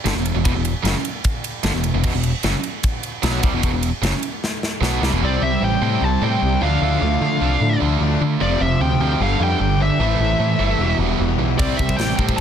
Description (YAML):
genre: heavy metal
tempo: 151 BPM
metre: 4/4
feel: straight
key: E phrygian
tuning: A4 = 439 Hz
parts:
  - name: heavy high-gain guitar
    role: riff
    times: 0.0-12.4 s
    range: E2 to D4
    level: -23 LUFS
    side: right 10 dB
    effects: distortion
  - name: sludgy distorted guitar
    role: riff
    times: 0.0-12.4 s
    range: E2 to B3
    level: -26 LUFS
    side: left 12 dB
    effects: overdrive
  - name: biting overdriven guitar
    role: riff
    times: 0.1-12.4 s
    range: E2 to D4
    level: -27 LUFS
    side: left 1 dB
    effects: none
  - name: growling picked electric bass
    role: bass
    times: 0.1-12.4 s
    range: E1 to D3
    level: -21 LUFS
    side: equal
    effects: overdrive
  - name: tight metal drum kit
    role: drums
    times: 0.1-5.1, 11.6-12.4 s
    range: crash cymbal, kick drum, ride cymbal, snare drum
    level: -22 LUFS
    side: equal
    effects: none
  - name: pipe organ, cornet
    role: sustained chords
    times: 5.2-12.4 s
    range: G3 to D5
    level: -33 LUFS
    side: equal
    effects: none
  - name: high-gain lead guitar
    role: melody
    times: 5.3-12.4 s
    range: D5 to A5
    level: -23 LUFS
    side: left 1 dB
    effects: distortion
room: little or no reverb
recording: dense, heavily limited modern master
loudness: -17 LUFS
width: side -8 dB against mid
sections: 0.0-5.2 A section; 5.2-12.4 B section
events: drum fill 4.4-5.2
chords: 0.0 Em; 5.2 C; 6.6 Dm; 8.4 F; 9.2 G; 10.0 Am; 10.8 Em; 11.6 C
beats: 0.06 | 0.45 0.85 1.25 1.65 | 2.04 2.44 2.84 3.24 | 3.63 4.03 4.43 4.83 | 5.22 5.62 6.02 6.42 | 6.82 7.21 7.61 8.01 | 8.41 8.80 9.20 9.60 | 10.00 10.39 10.79 11.19 | 11.59 11.98 12.38